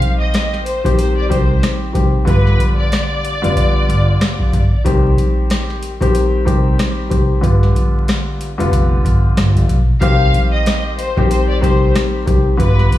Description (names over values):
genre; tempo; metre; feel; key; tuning
hip hop, boom-bap hip-hop; 93 BPM; 4/4; swing 58% on 16ths; C harmonic minor; A4 = 439 Hz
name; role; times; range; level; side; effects
warm studio violin section; melody; 0.0-4.8, 10.0-13.0 s; B4 to F5; -21 LUFS; left 2 dB; high-pass filter, low-pass filter, tape echo
dark baby grand piano; accompaniment; 0.0-13.0 s; D3 to G4; -19 LUFS; left 3 dB; high-pass filter, low-pass filter
booming analog drum machine; drums; 0.0-13.0 s; hi-hat, kick drum, rim click, snare drum; -16 LUFS; equal; none
upright bass; bass; 0.8-12.9 s; F1 to C2; -17 LUFS; equal; none
room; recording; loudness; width
small room ambience; vinyl crackle, studio reverb; -12 LUFS; side -14 dB against mid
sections
0.0-10.0 A section; 10.0-13.0 B section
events
none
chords
0.0 Cm; 2.3 G7; 4.8 Cm; 7.4 G7; 10.0 Cm